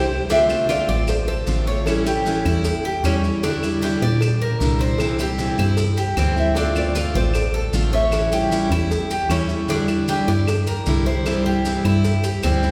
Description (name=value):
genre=latin, Cuban son and guajira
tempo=153 BPM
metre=4/4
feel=straight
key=D minor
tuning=A4 = 440 Hz
part: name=picked plugged-in steel-string acoustic guitar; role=accompaniment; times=0.0-12.7 s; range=C3 to F4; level=-26 LUFS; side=equal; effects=none
part: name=Cuban tres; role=arpeggios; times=0.0-12.7 s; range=C4 to D5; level=-28 LUFS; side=equal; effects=none
part: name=woody FM bass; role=bass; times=0.0-12.7 s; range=A1 to Bb2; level=-24 LUFS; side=equal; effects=none
part: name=nylon-string guitar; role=melody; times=0.3-2.6, 6.2-8.7 s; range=A4 to G5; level=-26 LUFS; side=equal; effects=none
part: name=cowbell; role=percussion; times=0.3-12.6 s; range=none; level=-33 LUFS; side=equal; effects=none
part: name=maracas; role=percussion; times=0.3-12.7 s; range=none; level=-38 LUFS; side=equal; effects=none
part: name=claves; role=percussion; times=0.5-12.6 s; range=none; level=-39 LUFS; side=equal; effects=none
room=wet church reverb, RT60 3.7 s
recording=recorded in a church or concert hall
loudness=-20 LUFS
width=mono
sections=0.3-12.7 A section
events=drum fill 0.0-0.3; band accent 0.0-0.3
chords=0.3 Dm7; 1.9 A7; 3.4 Em7b5; 5.0 C; 6.6 Dm7; 8.1 A7; 9.7 Em7b5; 11.3 C